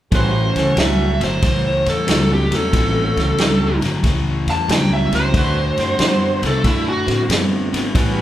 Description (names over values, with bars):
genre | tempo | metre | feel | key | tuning
electric blues shuffle | 92 BPM | 4/4 | swing 67% on 8ths | A mixolydian | A4 = 443 Hz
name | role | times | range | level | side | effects
percussive tonewheel organ | accompaniment | 0.1-8.2 s | F#3 to G4 | -26 LUFS | right 4 dB | chorus vibrato, slow rotary speaker
overdriven semi-hollow guitar | riff | 0.1-8.2 s | A2 to B3 | -23 LUFS | left 3 dB | none
clear horn section | stabs | 0.1-1.3, 5.3-8.2 s | C4 to C5 | -26 LUFS | right 3 dB | none
upright bass | bass | 0.1-8.2 s | G1 to A2 | -22 LUFS | equal | none
vintage drum kit | drums | 0.1-8.2 s | kick drum, ride cymbal, snare drum | -19 LUFS | equal | none
dark smooth lead guitar | melody | 0.2-7.2 s | E4 to A5 | -21 LUFS | right 1 dB | overdrive
room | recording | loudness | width
moderate large studio reverb, RT60 1.1 s | band playing live in one room | -15 LUFS | side -12 dB against mid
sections
0.1-8.2 A section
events
lead electric guitar solo 0.1-8.2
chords
0.1 A13; 5.3 D13